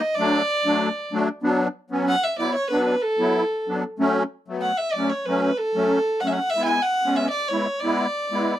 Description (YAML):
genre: klezmer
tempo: 94 BPM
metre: 2/4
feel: straight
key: B dorian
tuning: A4 = 440 Hz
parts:
  - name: rich violin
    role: melody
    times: 0.0-8.6 s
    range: A4 to G#5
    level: -22 LUFS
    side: equal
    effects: none
  - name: musette accordion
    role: accompaniment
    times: 0.2-8.5 s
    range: F#3 to E4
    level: -22 LUFS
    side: equal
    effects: none
room: little or no reverb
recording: dry, close 1970s-style studio recording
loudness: -20 LUFS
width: side -12 dB against mid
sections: 0.0-1.4 A section; 1.4-8.6 B section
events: none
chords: 0.2 D; 1.4 Bm; 4.0 F#m; 6.5 E